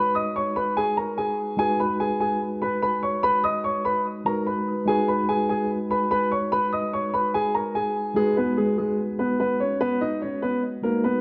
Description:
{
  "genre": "hip hop",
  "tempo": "146 BPM",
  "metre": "4/4",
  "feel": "half-time",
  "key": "G# minor",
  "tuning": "A4 = 440 Hz",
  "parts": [
    { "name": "dark concert grand piano", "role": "melody", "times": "0.0-11.2 s", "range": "G#3 to D#6", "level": "-25 LUFS", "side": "equal", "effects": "low-pass filter" },
    { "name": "mellow tine electric piano", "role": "accompaniment", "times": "0.0-11.2 s", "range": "G#3 to B4", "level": "-31 LUFS", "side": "equal", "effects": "low-pass filter" }
  ],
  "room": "light reverb, studio reverb",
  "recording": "dark, warm production",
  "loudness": "-24 LUFS",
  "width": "mono",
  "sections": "0.0-8.2 A section; 8.2-11.2 B section",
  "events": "none",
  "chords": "0.0 G#m7"
}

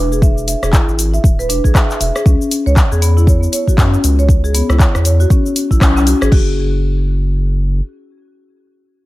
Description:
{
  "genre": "afro house",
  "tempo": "118 BPM",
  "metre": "4/4",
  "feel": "swing 59% on 16ths",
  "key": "unclear",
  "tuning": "A4 = 444 Hz",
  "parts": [
    { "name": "marimba with medium mallets", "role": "arpeggios", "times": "0.0-6.6 s", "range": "B3 to E5", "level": "-18 LUFS", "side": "left 1 dB", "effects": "sidechain pumping, tape echo" },
    { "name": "round analog bass", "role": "bass", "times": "0.0-7.8 s", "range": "D1 to F#2", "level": "-14 LUFS", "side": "equal", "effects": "sidechain pumping" },
    { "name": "deep house drum kit", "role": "drums", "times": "0.1-6.4 s", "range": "crash cymbal, handclaps, hi-hat, rim click, shaker", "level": "-20 LUFS", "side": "left 1 dB", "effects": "none" },
    { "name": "electronic kick drum", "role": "drums", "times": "0.2-6.4 s", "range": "none", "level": "-11 LUFS", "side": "equal", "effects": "none" }
  ],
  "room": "little or no reverb",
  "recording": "none",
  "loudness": "-11 LUFS",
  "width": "side -18 dB against mid",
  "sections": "0.0-6.3 A section; 6.3-9.1 B section",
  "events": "drop 0.0-6.3; band accent 5.8",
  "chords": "0.0 E7; 2.3 C#m7; 6.3 N.C."
}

